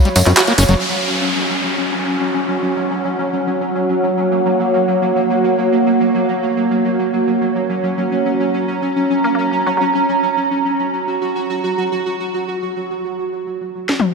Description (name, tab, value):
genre	psychedelic trance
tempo	free time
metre	none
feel	none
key	F# major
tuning	A4 = 440 Hz
part	pulsing gated texture	sustained chords	0.0-13.9 s	F#3 to E#5	-18 LUFS	right 1 dB	chorus, built-in reverb
part	warbly tape-like pad	texture	0.0-13.9 s	F#4 to B5	-20 LUFS	right 2 dB	chorus, built-in reverb
part	overdriven acid bass	riff	0.1-0.7 s	F#3 to F#4	-19 LUFS	equal	distortion, auto-pan, digital delay
part	garage drum kit	drums	0.1-0.8, 13.9-14.1 s	bongos, handclaps, hi-hat, ride cymbal, snare drum, toms	-16 LUFS	left 2 dB	overdrive
part	tambourine	percussion	0.1-0.8 s	none	-25 LUFS	right 3 dB	none
part	tight sequencer bass	bass	0.2-0.8 s	F#1 to F#2	-13 LUFS	equal	none
part	downlifter	sound effects	0.8-4.2 s	none	-23 LUFS	equal	none
part	resonant blip pluck	second line	9.2-9.8 s	F#3 to A#3	-24 LUFS	left 4 dB	chorus, cassette tape, high-pass filter, ping-pong delay
room	moderate lush hall reverb, RT60 1.8 s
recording	none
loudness	-15 LUFS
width	side -4 dB against mid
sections	0.8-14.1 A section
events	band accent 0.4; drum fill 13.9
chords	0.0 F#5